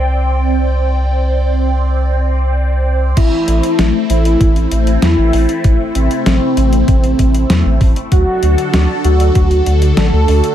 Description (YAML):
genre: synthwave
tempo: 97 BPM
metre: 4/4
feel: straight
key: A dorian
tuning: A4 = 441 Hz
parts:
  - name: phased analog pad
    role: sustained chords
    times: 0.0-10.5 s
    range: D3 to G5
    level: -19 LUFS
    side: equal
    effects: phaser, chorus, vintage 12-bit sampler grit, sidechain pumping
  - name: round analog bass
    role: bass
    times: 0.0-10.4 s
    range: A1 to E2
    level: -13 LUFS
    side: equal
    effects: none
  - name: wide unison lead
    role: melody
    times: 3.2-10.5 s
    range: C4 to A4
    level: -16 LUFS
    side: equal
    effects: ping-pong delay
  - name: detuned 8-bit digital drum machine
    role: drums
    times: 3.2-10.5 s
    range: crash cymbal, hi-hat, snare drum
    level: -19 LUFS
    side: left 1 dB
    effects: small room reverb
  - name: electronic kick drum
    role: drums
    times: 3.2-9.5 s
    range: none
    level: -12 LUFS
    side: equal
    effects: small room reverb
room: digital ambience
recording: low-pass filter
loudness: -11 LUFS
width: side -11 dB against mid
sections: 0.0-3.2 A section; 3.2-10.5 B section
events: none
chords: 0.0 Csus2; 3.2 Am; 8.1 D